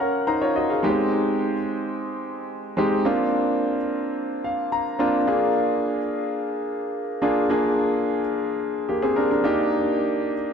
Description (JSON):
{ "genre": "pop", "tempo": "108 BPM", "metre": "4/4", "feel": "straight", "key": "unclear", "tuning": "A4 = 440 Hz", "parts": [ { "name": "clear concert grand piano", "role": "solo", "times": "0.0-10.5 s", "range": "Ab3 to Bb5", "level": "-21 LUFS", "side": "equal", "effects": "ping-pong delay" } ], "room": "moderate lush hall reverb, RT60 2.5 s", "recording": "none", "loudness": "-21 LUFS", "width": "side -7 dB against mid", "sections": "0.0-5.3 A section; 5.3-10.5 B section", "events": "grand piano fill 0.0-0.8, 4.2-5.3", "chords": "0.0 Gbmaj7; 0.8 Abmaj7; 3.1 Bbadd9; 5.3 Bb7; 9.4 Ebmaj7" }